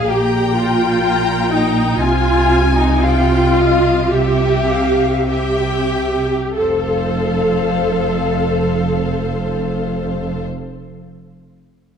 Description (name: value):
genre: classical, slow romantic movement for string orchestra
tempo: 44-66 BPM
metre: 4/4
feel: rubato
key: unclear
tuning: A4 = 441 Hz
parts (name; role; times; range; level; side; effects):
- dark studio violin section; melody; 0.0-10.4 s; Eb5 to Ab5; -23 LUFS; left 7 dB; none
- clear studio violin section; second line; 0.0-10.4 s; C5 to Bb5; -25 LUFS; left 4 dB; none
- rich studio viola section; accompaniment; 0.0-10.4 s; Eb4 to A4; -18 LUFS; equal; none
- clear studio cello section; bass; 0.0-10.4 s; F2 to C3; -21 LUFS; right 2 dB; none
- rich studio double bass section; bass; 0.0-10.4 s; F1 to C2; -22 LUFS; right 2 dB; none
room: moderate concert hall reverb, RT60 2.2 s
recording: dark, warm production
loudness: -14 LUFS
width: side -7 dB against mid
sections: 0.0-6.6 A section; 6.6-11.5 B section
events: slowing down 0.0-6.6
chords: 0.1 Ebadd9/Bb; 2.0 Fm/C; 4.1 C; 6.6 F